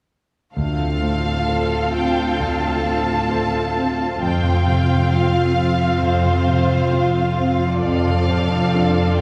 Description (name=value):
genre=cinematic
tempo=66 BPM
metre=4/4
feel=rubato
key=D minor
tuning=A4 = 442 Hz
part: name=clear symphonic violin section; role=melody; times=0.6-9.2 s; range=C5 to A5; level=-28 LUFS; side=equal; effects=none
part: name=rich studio violin section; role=second line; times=0.6-9.2 s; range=F4 to F5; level=-27 LUFS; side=equal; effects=none
part: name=rich studio viola section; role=accompaniment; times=0.6-9.2 s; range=C4 to F4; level=-28 LUFS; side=equal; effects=none
part: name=warm concert grand piano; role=accompaniment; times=0.6-9.2 s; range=D2 to A4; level=-23 LUFS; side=equal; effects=none
part: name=concert harp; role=arpeggios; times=0.6-9.2 s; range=F2 to A4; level=-28 LUFS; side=equal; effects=none
part: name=clear symphonic cello section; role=bass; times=0.6-9.2 s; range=D2 to F2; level=-26 LUFS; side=equal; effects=none
room=wet concert hall reverb, RT60 2.1 s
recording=heard from further back in the room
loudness=-19 LUFS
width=mono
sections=0.6-9.2 A section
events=none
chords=0.6 Dm7; 4.2 Fsus2; 7.8 Dm7/F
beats=| 0.56 1.48 2.40 3.31 | 4.22 5.11 6.01 6.92 | 7.83 8.74